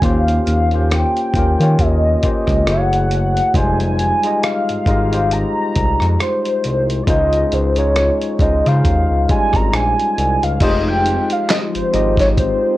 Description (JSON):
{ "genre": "R&B, neo-soul", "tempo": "68 BPM", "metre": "4/4", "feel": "swing 57% on 16ths", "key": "F minor", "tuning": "A4 = 440 Hz", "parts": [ { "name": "warm velvety synth lead", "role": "melody", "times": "0.0-12.8 s", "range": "C5 to Bb5", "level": "-18 LUFS", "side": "equal", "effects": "chorus, plate reverb" }, { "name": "barky tine electric piano", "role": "accompaniment", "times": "0.0-12.8 s", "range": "G3 to Eb5", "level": "-20 LUFS", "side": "left 2 dB", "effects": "plate reverb" }, { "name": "smooth synth bass", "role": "bass", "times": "0.0-12.5 s", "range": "F1 to Eb3", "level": "-18 LUFS", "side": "equal", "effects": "none" }, { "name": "dusty soul sampler-style drum kit", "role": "drums", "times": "0.0-12.6 s", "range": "crash cymbal, handclaps, hi-hat, kick drum, rim click, snare drum", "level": "-19 LUFS", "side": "equal", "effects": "none" }, { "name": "hollow soft pad", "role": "sustained chords", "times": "11.2-12.8 s", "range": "F3 to F4", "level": "-27 LUFS", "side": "left 2 dB", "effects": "ensemble chorus" } ], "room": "moderate small room reverb, RT60 0.5 s", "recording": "worn, warbling old tape, cassette tape, warbly pitch drift", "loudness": "-14 LUFS", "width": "side -16 dB against mid", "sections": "0.0-10.6 A section; 10.6-12.8 B section", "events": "none", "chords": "0.0 Eb13; 2.7 Gbm7; 3.5 Fm7; 7.1 Dbmaj9; 10.6 Fm7" }